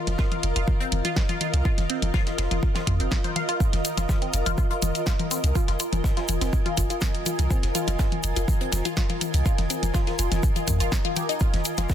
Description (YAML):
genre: minimal techno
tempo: 123 BPM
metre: 4/4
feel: straight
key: F minor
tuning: A4 = 440 Hz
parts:
  - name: granular cloud pad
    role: texture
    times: 0.0-11.9 s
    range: F4 to Ab5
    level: -30 LUFS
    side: equal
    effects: built-in reverb, sidechain pumping
  - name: punchy sub bass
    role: bass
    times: 0.1-11.9 s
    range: F1 to F2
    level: -25 LUFS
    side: equal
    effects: sidechain pumping
  - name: deep reggae drum kit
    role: drums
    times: 0.1-11.9 s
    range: hi-hat, shaker, snare drum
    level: -42 LUFS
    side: left 1 dB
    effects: none
  - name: house drum kit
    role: drums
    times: 0.1-11.9 s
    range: hi-hat, snare drum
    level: -30 LUFS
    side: equal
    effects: studio reverb
  - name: electronic congas and toms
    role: percussion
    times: 0.1-11.9 s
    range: none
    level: -33 LUFS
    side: left 8 dB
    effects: studio reverb, ping-pong delay
  - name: resonant blip pluck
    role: riff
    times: 0.2-11.8 s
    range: C4 to F5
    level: -32 LUFS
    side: left 1 dB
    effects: phaser, wide subtle chorus, sidechain pumping, tape echo
  - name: electronic kick drum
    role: drums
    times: 0.2-11.9 s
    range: none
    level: -24 LUFS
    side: equal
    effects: studio reverb
  - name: egg shaker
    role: percussion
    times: 3.6-11.9 s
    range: none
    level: -36 LUFS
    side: left 1 dB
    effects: none
room: little or no reverb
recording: dense, heavily limited modern master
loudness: -22 LUFS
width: side -10 dB against mid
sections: 0.0-11.9 A section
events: none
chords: 0.0 Fm7